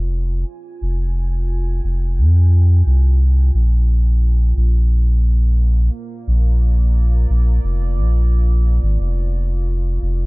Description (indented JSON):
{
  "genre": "ambient dub",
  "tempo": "88 BPM",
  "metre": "4/4",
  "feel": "straight",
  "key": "F dorian",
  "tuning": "A4 = 439 Hz",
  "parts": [
    { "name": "deep dark ambient pad", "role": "sustained chords", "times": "0.0-10.3 s", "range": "Bb3 to Ab5", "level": "-33 LUFS", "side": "right 2 dB", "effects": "chorus, built-in reverb" },
    { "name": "soft dub sub bass", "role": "bass", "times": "0.0-10.3 s", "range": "F1 to F2", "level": "-14 LUFS", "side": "equal", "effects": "none" }
  ],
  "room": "little or no reverb",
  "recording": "none",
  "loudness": "-14 LUFS",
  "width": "side -27 dB against mid",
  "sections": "0.0-10.3 A section",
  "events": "fade-in on ambient pad 0.0-10.3",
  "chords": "0.0 Fm"
}